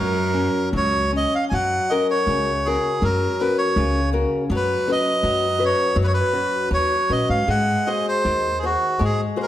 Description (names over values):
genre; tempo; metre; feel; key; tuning
fado-style ballad; 80 BPM; 2/4; rubato; F# major; A4 = 442 Hz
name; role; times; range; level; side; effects
melodica; melody; 0.0-9.5 s; F#4 to G#5; -21 LUFS; right 2 dB; none
bright cello; second line; 0.0-0.7 s; F#2; -28 LUFS; right 5 dB; none
nylon-string guitar; accompaniment; 0.0-9.5 s; C#3 to B#4; -23 LUFS; left 3 dB; none
upright bass; bass; 0.0-9.3 s; C#2 to A#2; -24 LUFS; equal; none
room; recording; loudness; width
moderate recital hall reverb, RT60 1.7 s; none; -18 LUFS; side -12 dB against mid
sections
0.0-1.5 A section; 1.5-9.5 B section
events
none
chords
0.0 F#; 4.5 Bsus2/F#; 7.5 G#7